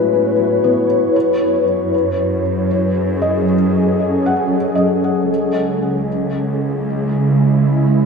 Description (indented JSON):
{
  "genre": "ambient",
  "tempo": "58 BPM",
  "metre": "4/4",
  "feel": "straight",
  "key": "unclear",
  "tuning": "A4 = 440 Hz",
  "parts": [
    { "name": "ethereal airy pad", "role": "sustained chords", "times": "0.0-8.1 s", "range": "C#3 to C#5", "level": "-15 LUFS", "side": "equal", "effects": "ensemble chorus, built-in reverb" },
    { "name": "felt-muted upright piano", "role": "arpeggios", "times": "0.0-8.1 s", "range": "F#3 to F#5", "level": "-22 LUFS", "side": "left 2 dB", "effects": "ping-pong delay" },
    { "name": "muted symphonic cello section", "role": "bass", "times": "0.0-8.1 s", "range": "C#2 to A2", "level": "-24 LUFS", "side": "equal", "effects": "none" }
  ],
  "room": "wet scoring stage reverb, RT60 1.9 s, small room reverb",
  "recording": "none",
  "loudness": "-14 LUFS",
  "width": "side -5 dB against mid",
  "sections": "0.0-8.1 A section",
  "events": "none",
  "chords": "0.0 Amaj7; 1.2 F#m7; 5.3 C#m",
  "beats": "0.12 | 1.15 2.19 3.22 4.25 | 5.29 6.32 7.36"
}